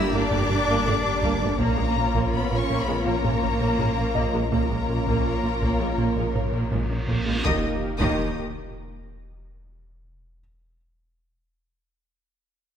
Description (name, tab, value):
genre	cinematic, hybrid orchestral and electronic film score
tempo	82 BPM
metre	4/4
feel	straight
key	unclear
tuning	A4 = 438 Hz
part	warm symphonic violin section	melody	0.0-8.4 s	Bb5 to Fb6	-31 LUFS	left 6 dB	none
part	warm symphonic violin section	second line	0.0-8.4 s	Bb4 to Eb5	-33 LUFS	left 4 dB	none
part	warm symphonic viola section	accompaniment	0.0-8.4 s	Ab3 to G4	-31 LUFS	right 2 dB	none
part	mellow French horn section	sustained chords	0.0-7.8 s	Bb3 to Fb4	-33 LUFS	left 5 dB	none
part	warm analog pad	sustained chords	0.0-7.9 s	Bb3 to Bb4	-33 LUFS	equal	chorus
part	harp-like synth pluck	arpeggios	0.0-7.4 s	G3 to Bb4	-35 LUFS	right 2 dB	none
part	round analog bass	riff	0.0-7.4 s	G2 to Bb3	-29 LUFS	right 2 dB	none
part	rich symphonic double bass section	bass	0.0-8.4 s	G1 to Eb2	-32 LUFS	right 3 dB	none
part	warm sub bass	bass	0.0-8.4 s	Eb1 to Bb1	-31 LUFS	left 1 dB	none
part	warm symphonic cello section	bass	0.0-8.4 s	Eb3 to Fb4	-31 LUFS	right 2 dB	none
part	dark concert grand piano	texture	0.0-7.5 s	F4 to F5	-37 LUFS	left 3 dB	none
part	taiko ensemble	drums	0.3-9.4 s	none	-31 LUFS	equal	none
part	reverse cymbal and impact	sound effects	6.6-10.4 s	none	-35 LUFS	equal	none
room	moderate scoring stage reverb, RT60 1.8 s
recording	none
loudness	-21 LUFS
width	side -8 dB against mid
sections	0.0-7.5 A section; 7.5-10.4 B section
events	reverse cymbal 6.6-7.5; impact 7.5-10.4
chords	0.0 Gm; 1.6 Bbm; 7.5 Eb